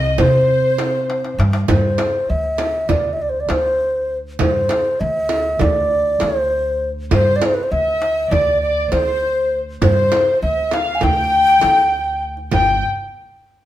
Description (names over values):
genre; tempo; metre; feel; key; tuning
Turkish makam ensemble; 199 BPM (eighths); 9/8; straight; unclear; A4 = 440 Hz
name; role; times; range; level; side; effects
mellow baroque flute; melody; 0.0-12.8 s; B4 to Ab5; -17 LUFS; equal; none
dark studio violin section; second line; 0.0-1.4, 7.1-12.8 s; C5 to G5; -23 LUFS; left 3 dB; none
upright bass; bass; 0.0-12.8 s; G1 to C3; -22 LUFS; equal; none
darbuka; percussion; 0.2-12.8 s; none; -25 LUFS; equal; none
frame drum; percussion; 0.2-12.8 s; none; -24 LUFS; right 3 dB; none
room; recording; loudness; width
wet stone room reverb, RT60 1.1 s; band playing live in one room; -15 LUFS; side -13 dB against mid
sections
0.0-1.7 A section; 1.7-12.5 B section; 12.5-13.7 C section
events
drum fill 1.1-1.7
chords
none